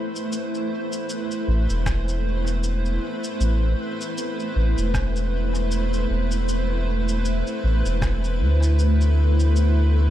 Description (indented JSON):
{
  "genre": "ambient dub",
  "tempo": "78 BPM",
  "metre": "4/4",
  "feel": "swing 56% on 16ths",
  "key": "A minor",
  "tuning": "A4 = 440 Hz",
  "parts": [
    { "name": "granular cloud pad", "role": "sustained chords", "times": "0.0-10.1 s", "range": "A3 to C5", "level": "-26 LUFS", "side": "equal", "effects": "built-in reverb" },
    { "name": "electronic shaker and rim click", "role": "drums", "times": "0.2-9.7 s", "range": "none", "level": "-34 LUFS", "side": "equal", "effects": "studio reverb, dub echo" },
    { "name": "soft dub sub bass", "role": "bass", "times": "1.5-10.1 s", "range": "E1 to D2", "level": "-20 LUFS", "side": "equal", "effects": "none" },
    { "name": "electronic kick drum", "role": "drums", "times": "1.9-8.2 s", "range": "none", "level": "-26 LUFS", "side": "equal", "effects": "studio reverb" }
  ],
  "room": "little or no reverb",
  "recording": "echo-heavy mix",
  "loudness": "-20 LUFS",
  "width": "side -12 dB against mid",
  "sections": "0.0-10.1 A section",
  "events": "none",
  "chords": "0.0 Am"
}